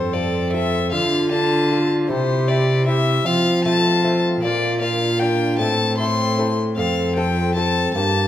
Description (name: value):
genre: classical, renaissance-style consort dance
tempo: 154 BPM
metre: 3/4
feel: straight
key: unclear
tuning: A4 = 439 Hz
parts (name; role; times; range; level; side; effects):
- warm violin; melody; 0.0-8.3 s; C5 to C6; -22 LUFS; left 4 dB; none
- tenor recorder; second line; 0.0-8.3 s; F4 to A4; -23 LUFS; right 2 dB; none
- lute; accompaniment; 0.0-8.3 s; F2 to A4; -27 LUFS; left 3 dB; none
- mellow bassoon; accompaniment; 0.0-8.3 s; Bb3 to E4; -27 LUFS; left 2 dB; none
- rich cello; bass; 0.0-8.3 s; F2 to F3; -22 LUFS; right 1 dB; none
room: wet recital hall reverb, RT60 1.7 s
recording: none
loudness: -17 LUFS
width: side -11 dB against mid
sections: 0.0-8.3 A section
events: none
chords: 0.0 F; 0.9 Dm; 2.1 C; 3.3 F; 4.4 Bb; 5.6 Am; 6.8 F